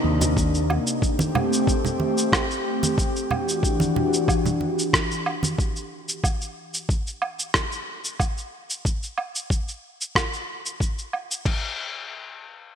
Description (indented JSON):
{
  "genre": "sunset chillout",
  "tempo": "92 BPM",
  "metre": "4/4",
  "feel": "straight",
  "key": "unclear",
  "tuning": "A4 = 440 Hz",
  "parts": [
    { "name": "airy breathy pad", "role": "sustained chords", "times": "0.0-6.2 s", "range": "C3 to G4", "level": "-24 LUFS", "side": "left 1 dB", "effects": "chorus" },
    { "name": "mellow fretless electric bass", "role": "bass", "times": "0.0-0.8 s", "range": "Eb2", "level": "-22 LUFS", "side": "equal", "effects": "none" },
    { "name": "dusty soul sampler-style drum kit", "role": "drums", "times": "0.2-11.6 s", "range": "cabasa, crash cymbal, rim click, woodblock", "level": "-26 LUFS", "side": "right 1 dB", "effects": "overdrive" },
    { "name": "congas and bongos", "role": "percussion", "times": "0.2-5.6 s", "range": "none", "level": "-27 LUFS", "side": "right 3 dB", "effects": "none" },
    { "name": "electronic kick drum", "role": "drums", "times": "0.4-11.6 s", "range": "none", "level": "-25 LUFS", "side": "equal", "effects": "overdrive" }
  ],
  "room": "moderate lush hall reverb, RT60 2.6 s",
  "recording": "bright 1980s-style digital production",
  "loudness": "-22 LUFS",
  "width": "side -8 dB against mid",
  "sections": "0.0-11.5 A section; 11.5-12.8 B section",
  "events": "filter sweep on analog synth pad 0.0-6.2",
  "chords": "0.0 Cm9; 1.0 Am7; 3.3 Em9; 6.2 N.C."
}